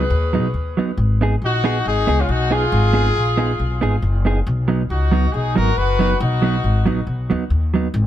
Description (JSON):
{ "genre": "ska", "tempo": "138 BPM", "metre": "4/4", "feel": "straight", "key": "unclear", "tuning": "A4 = 441 Hz", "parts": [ { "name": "clear horn section", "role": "melody", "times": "0.0-7.0 s", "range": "C#4 to B4", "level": "-22 LUFS", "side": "left 2 dB", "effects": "dub echo" }, { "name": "mellow electric guitar", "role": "accompaniment", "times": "0.0-7.9 s", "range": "F#3 to G#4", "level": "-20 LUFS", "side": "right 5 dB", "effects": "none" }, { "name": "upright bass", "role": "bass", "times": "0.0-8.1 s", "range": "F#1 to D#2", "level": "-18 LUFS", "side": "left 1 dB", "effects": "none" } ], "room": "little or no reverb", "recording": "none", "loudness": "-16 LUFS", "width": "side -12 dB against mid", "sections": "0.0-4.5 A section; 4.5-8.1 A section", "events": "none", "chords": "0.0 B; 1.0 G#m", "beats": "0.10 0.54 | 0.97 1.41 1.84 2.28 | 2.72 3.15 3.59 4.02 | 4.46 4.89 5.33 5.76 | 6.20 6.63 7.07 7.50 | 7.94" }